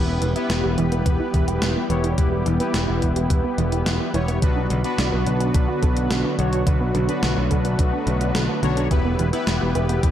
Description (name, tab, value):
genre	synthwave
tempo	107 BPM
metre	4/4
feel	straight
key	E minor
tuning	A4 = 440 Hz
part	lush unison pad	sustained chords	0.0-10.1 s	D3 to G4	-27 LUFS	right 1 dB	chorus, sidechain pumping
part	wide unison pluck	arpeggios	0.0-10.1 s	D3 to G4	-28 LUFS	right 3 dB	tape echo
part	analog synth brass	stabs	0.0-10.1 s	B3 to C#5	-26 LUFS	left 2 dB	chorus, tape echo
part	modern bright picked electric bass	bass	0.0-10.1 s	E1 to B1	-23 LUFS	equal	sidechain pumping
part	gated 80s digital drum machine	drums	0.2-10.1 s	hi-hat, snare drum	-28 LUFS	equal	gated reverb, gated reverb snare
part	electronic kick drum	drums	1.1-10.1 s	none	-20 LUFS	equal	none
room	light reverb, digital ambience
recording	dark, warm production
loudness	-19 LUFS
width	side -11 dB against mid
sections	0.0-10.1 A section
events	none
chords	0.0 Em; 4.4 Bm; 8.9 Em